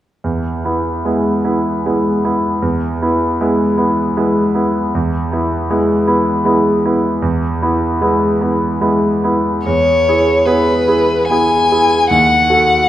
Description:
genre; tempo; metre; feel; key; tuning
classical, romantic duo for violin and grand piano; 69-80 BPM; 3/4; rubato; E major; A4 = 440 Hz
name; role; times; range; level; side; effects
bright concert grand piano; accompaniment; 0.2-12.9 s; D#2 to A4; -14 LUFS; right 1 dB; none
clear violin; melody; 9.7-12.9 s; B4 to G#5; -12 LUFS; left 2 dB; none
room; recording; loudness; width
wet recital hall reverb, RT60 1.6 s; dark, warm production; -12 LUFS; side -12 dB against mid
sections
0.2-9.7 A section; 9.7-12.9 B section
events
none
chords
0.2 E; 12.1 B7/D# (rootless)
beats
| 0.23 1.04 1.83 | 2.61 3.39 4.16 | 4.93 5.69 6.45 | 7.21 8.00 8.82 | 9.66 10.46 11.30 | 12.11

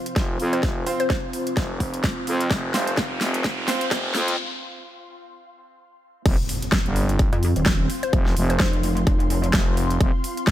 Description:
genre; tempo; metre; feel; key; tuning
bass house; 128 BPM; 4/4; swing 57% on 16ths; unclear; A4 = 439 Hz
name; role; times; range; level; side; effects
dark analog pad; sustained chords; 0.0-4.3 s; C4 to C5; -32 LUFS; right 1 dB; chorus, sidechain pumping
riser and impact; sound effects; 1.3-8.1 s; none; -32 LUFS; equal; none
ethereal airy pad; texture; 0.0-10.5 s; C4 to C6; -33 LUFS; equal; ensemble chorus, built-in reverb, sidechain pumping
big-room dance drum kit; drums; 0.1-10.5 s; crash cymbal, hi-hat, snare drum; -27 LUFS; equal; overdrive
growling FM bass; bass; 0.2-10.1 s; F1 to F2; -24 LUFS; equal; tube saturation, sidechain pumping, high-pass filter
electronic kick drum; drums; 0.2-10.5 s; none; -22 LUFS; equal; overdrive
mallet-like synth pluck; melody; 0.5-1.2, 8.0-8.7 s; C5; -30 LUFS; left 2 dB; chorus, dub echo
clear grand piano; stabs; 0.9-3.8 s; C4 to C5; -30 LUFS; right 2 dB; vintage 12-bit sampler grit, sidechain pumping, dub echo
pulsing pluck wobble bass; bass; 7.3-9.5 s; Eb1 to F2; -22 LUFS; equal; chorus, overdrive, sidechain pumping
room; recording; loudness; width
light reverb, digital ambience; high-pass filter; -20 LUFS; side -13 dB against mid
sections
0.0-6.3 A section; 6.3-10.5 B section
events
build-up 0.0-6.3; drum fill 0.0-4.4; filter sweep 0.0-6.3; riser 1.3-4.4; break 4.4-6.3; drop 6.3-10.5; impact 6.3-8.1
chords
0.0 F5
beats
0.16 | 0.63 1.10 1.57 2.04 | 2.51 2.98 3.44 3.91 | 4.38 4.85 5.32 5.79 | 6.26 6.72 7.19 7.66 | 8.13 8.60 9.07 9.54 | 10.01 10.47

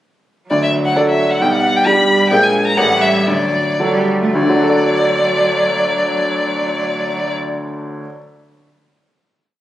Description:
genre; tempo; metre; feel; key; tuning
quick classical-period movement for piano trio; 108-134 BPM; 2/4; straight; D major; A4 = 440 Hz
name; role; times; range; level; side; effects
rich violin; melody; 0.5-7.3 s; D5 to B5; -16 LUFS; left 1 dB; none
rich cello; second line; 0.5-7.3 s; F#3 to A3; -23 LUFS; right 3 dB; none
bright grand piano; accompaniment; 0.5-8.2 s; A1 to D5; -17 LUFS; equal; none
room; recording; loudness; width
moderate recital hall reverb, RT60 1.4 s; recorded on a phone in the room, studio ambience, compression; -13 LUFS; side -13 dB against mid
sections
0.5-4.3 A section; 4.3-6.6 final chord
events
slowing down 1.9-4.3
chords
0.5 D; 1.4 G/B; 2.3 Bb7; 2.8 A7; 3.3 D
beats
| 0.51 0.96 | 1.41 1.86 | 2.31 2.77 | 3.27 3.80 | 4.35 4.90 | 5.46 6.01

